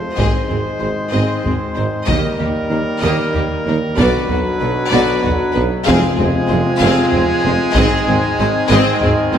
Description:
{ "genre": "cinematic, epic orchestral film score", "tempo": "64 BPM (dotted quarters)", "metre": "6/8", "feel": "straight", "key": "unclear", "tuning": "A4 = 440 Hz", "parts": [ { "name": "clear trombone section", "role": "sustained chords", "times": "0.0-9.4 s", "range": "B2 to Ab3", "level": "-23 LUFS", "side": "right 2 dB", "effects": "none" }, { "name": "mellow French horn section", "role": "sustained chords", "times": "0.0-9.4 s", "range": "Ab3 to F#4", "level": "-23 LUFS", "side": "left 2 dB", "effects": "none" }, { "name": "bright trumpet", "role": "stabs", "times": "0.0-9.4 s", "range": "Ab4 to C5", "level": "-23 LUFS", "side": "right 1 dB", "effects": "none" }, { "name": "clear symphonic violin section", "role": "melody", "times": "0.1-9.4 s", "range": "F#4 to F5", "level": "-24 LUFS", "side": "left 5 dB", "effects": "none" }, { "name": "rich symphonic violin section", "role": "second line", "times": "0.2-9.4 s", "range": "Bb3 to Ab4", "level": "-26 LUFS", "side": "left 3 dB", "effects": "none" }, { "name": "rich symphonic viola section", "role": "accompaniment", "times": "0.2-9.4 s", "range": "Bb3 to C4", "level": "-23 LUFS", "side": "equal", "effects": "none" }, { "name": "clear tuba", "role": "bass", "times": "0.2-9.4 s", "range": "F1 to Eb2", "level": "-23 LUFS", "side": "right 2 dB", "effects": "none" }, { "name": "rich studio cello section", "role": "bass", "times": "0.2-9.4 s", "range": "F2 to Eb3", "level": "-23 LUFS", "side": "right 2 dB", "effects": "none" }, { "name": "rich symphonic double bass section", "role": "bass", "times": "0.2-9.4 s", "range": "F1 to Eb2", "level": "-23 LUFS", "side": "right 3 dB", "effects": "none" }, { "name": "taiko ensemble", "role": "drums", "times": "0.2-9.3 s", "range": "none", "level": "-23 LUFS", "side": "left 1 dB", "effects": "none" }, { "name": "timpani", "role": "percussion", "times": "5.9-6.8 s", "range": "F2", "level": "-26 LUFS", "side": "left 1 dB", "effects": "none" } ], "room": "moderate concert hall reverb, RT60 2.4 s", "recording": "none", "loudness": "-13 LUFS", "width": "side -9 dB against mid", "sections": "0.0-9.4 A section", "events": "none", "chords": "0.2 Ab; 2.1 Eb; 4.0 Bm; 5.9 Fm; 7.8 Ab" }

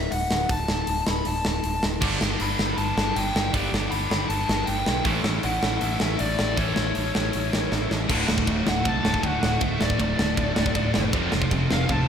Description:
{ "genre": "punk rock", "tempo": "158 BPM", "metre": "4/4", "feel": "straight", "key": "unclear", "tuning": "A4 = 440 Hz", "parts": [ { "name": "lead guitar through a small cranked amp", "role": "melody", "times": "0.0-12.1 s", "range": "C#5 to B5", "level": "-29 LUFS", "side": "left 2 dB", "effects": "overdrive, slapback echo, digital delay" }, { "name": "modern bright picked electric bass", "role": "bass", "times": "0.0-12.0 s", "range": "D1 to C2", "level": "-29 LUFS", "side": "equal", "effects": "none" }, { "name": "tight metal drum kit", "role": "drums", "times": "0.1-12.0 s", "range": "crash cymbal, hi-hat, kick drum, ride cymbal, snare drum", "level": "-26 LUFS", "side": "equal", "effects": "none" }, { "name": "distorted electric guitar", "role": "riff", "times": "2.0-12.1 s", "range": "D2 to A3", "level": "-30 LUFS", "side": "right 7 dB", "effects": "overdrive" }, { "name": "high-gain distorted guitar", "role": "riff", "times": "2.0-12.1 s", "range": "D2 to A4", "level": "-29 LUFS", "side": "equal", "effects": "distortion, slapback echo" }, { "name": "sludgy distorted guitar", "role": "riff", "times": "2.0-12.1 s", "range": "D2 to A3", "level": "-31 LUFS", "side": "left 6 dB", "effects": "overdrive" } ], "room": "moderate lush hall reverb, RT60 1.8 s, studio ambience", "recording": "big arena sound", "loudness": "-21 LUFS", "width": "side -8 dB against mid", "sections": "0.0-8.1 A section; 8.1-12.1 B section", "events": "drum fill 7.7-8.1; lead electric guitar solo 8.1-12.1", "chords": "0.0 D5; 2.0 G; 5.1 A; 8.1 D; 11.1 F" }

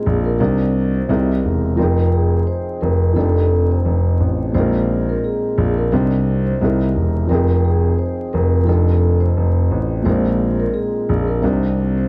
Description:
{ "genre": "lo-fi hip hop", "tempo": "87 BPM", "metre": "4/4", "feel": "swing 58% on 16ths", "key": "unclear", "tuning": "A4 = 440 Hz", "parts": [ { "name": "vibraphone with soft mallets", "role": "melody", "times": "0.0-12.1 s", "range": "Ab4 to C5", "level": "-26 LUFS", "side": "equal", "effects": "low-pass filter, plate reverb, analog delay" }, { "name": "dark upright piano", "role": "accompaniment", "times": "0.0-12.1 s", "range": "Bb2 to G5", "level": "-24 LUFS", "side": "equal", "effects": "low-pass filter" }, { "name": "dark grand piano", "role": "bass", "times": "0.1-12.0 s", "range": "E1 to C2", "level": "-19 LUFS", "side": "equal", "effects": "none" } ], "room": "moderate studio ambience, RT60 0.5 s", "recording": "dark, warm production, vinyl crackle", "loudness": "-17 LUFS", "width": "mono", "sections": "0.0-12.1 A section", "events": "none", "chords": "0.4 Cm9; 1.1 C7alt; 1.8 Fm9; 3.2 F13; 4.5 Bb9sus4; 5.9 Cm9; 6.6 C7alt; 7.3 Fm9; 8.7 F13; 10.0 Bb9sus4; 11.4 Cm9" }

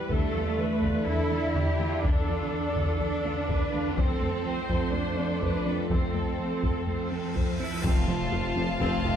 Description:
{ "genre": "cinematic, hybrid orchestral and electronic film score", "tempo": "124 BPM", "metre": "4/4", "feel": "straight", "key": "unclear", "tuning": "A4 = 439 Hz", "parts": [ { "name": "rich symphonic viola section", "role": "accompaniment", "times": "0.0-9.1 s", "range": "F3 to C5", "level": "-35 LUFS", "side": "equal", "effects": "none" }, { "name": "warbly tape-like pad", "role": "sustained chords", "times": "0.0-9.2 s", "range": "D3 to D5", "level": "-35 LUFS", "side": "equal", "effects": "chorus, built-in reverb" }, { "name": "rich symphonic cello section", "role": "bass", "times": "0.0-9.1 s", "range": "F2 to E4", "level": "-32 LUFS", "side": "right 1 dB", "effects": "none" }, { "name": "rich studio violin section", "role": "melody", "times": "0.1-9.2 s", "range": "D4 to A5", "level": "-38 LUFS", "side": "left 3 dB", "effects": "none" }, { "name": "clear trombone section", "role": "sustained chords", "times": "0.1-9.2 s", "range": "C3 to D4", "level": "-39 LUFS", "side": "right 3 dB", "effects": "none" }, { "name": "soft round pluck", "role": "arpeggios", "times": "0.1-9.2 s", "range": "D3 to F4", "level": "-38 LUFS", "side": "left 2 dB", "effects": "chorus, tape echo" }, { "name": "round analog bass", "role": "riff", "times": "0.1-9.2 s", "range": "E2 to F3", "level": "-33 LUFS", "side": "right 1 dB", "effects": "none" }, { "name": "rich symphonic double bass section", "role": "bass", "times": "0.1-9.1 s", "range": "F1 to F2", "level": "-35 LUFS", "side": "right 2 dB", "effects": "none" }, { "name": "taiko ensemble", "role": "drums", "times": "0.1-9.2 s", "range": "none", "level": "-31 LUFS", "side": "left 1 dB", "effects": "none" }, { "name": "cymbal swell and impact", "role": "sound effects", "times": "7.0-9.2 s", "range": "none", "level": "-39 LUFS", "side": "left 1 dB", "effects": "none" }, { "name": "rich cello", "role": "melody", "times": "7.6-9.2 s", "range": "E4 to F4", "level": "-34 LUFS", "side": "right 1 dB", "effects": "tape echo" }, { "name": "clear symphonic violin section", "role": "second line", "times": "7.8-9.2 s", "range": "F5", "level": "-35 LUFS", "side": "left 4 dB", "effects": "none" }, { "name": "mellow French horn section", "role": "sustained chords", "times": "7.8-9.2 s", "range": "A3 to C4", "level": "-36 LUFS", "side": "left 2 dB", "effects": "none" }, { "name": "mellow tuba", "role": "bass", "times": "7.8-9.1 s", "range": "F1", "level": "-37 LUFS", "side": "right 3 dB", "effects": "none" }, { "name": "wide detuned saw bass", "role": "bass", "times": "7.8-9.2 s", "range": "F1", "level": "-37 LUFS", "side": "equal", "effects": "chorus" } ], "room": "wet recital hall reverb, RT60 1.5 s", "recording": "heard from further back in the room", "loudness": "-25 LUFS", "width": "side -9 dB against mid", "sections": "0.0-7.8 A section; 7.8-9.2 B section", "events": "cymbal swell 7.0-7.8; impact 7.8-9.2", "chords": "0.1 Dm/E; 4.0 F" }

